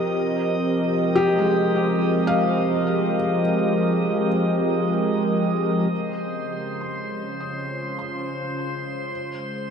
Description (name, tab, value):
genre	ambient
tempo	free time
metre	none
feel	none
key	F minor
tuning	A4 = 440 Hz
part	warm analog pad	sustained chords	0.0-9.7 s	Db3 to Eb5	-22 LUFS	equal	chorus
part	drifting glass-harmonics texture	texture	0.0-9.7 s	C5 to Eb6	-30 LUFS	right 1 dB	chorus, built-in reverb
part	felt-muted upright piano	arpeggios	1.2-9.7 s	Ab3 to Eb6	-25 LUFS	left 2 dB	tape echo
room	wet cathedral reverb, RT60 6.6 s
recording	dark, warm production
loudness	-20 LUFS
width	side -7 dB against mid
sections	0.0-5.9 A section; 5.9-9.7 B section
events	fade-in on analog synth pad 5.9-9.7; fade-in on felt piano 5.9-9.7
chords	0.0 Fm11; 5.9 Dbmaj7; 9.1 Ab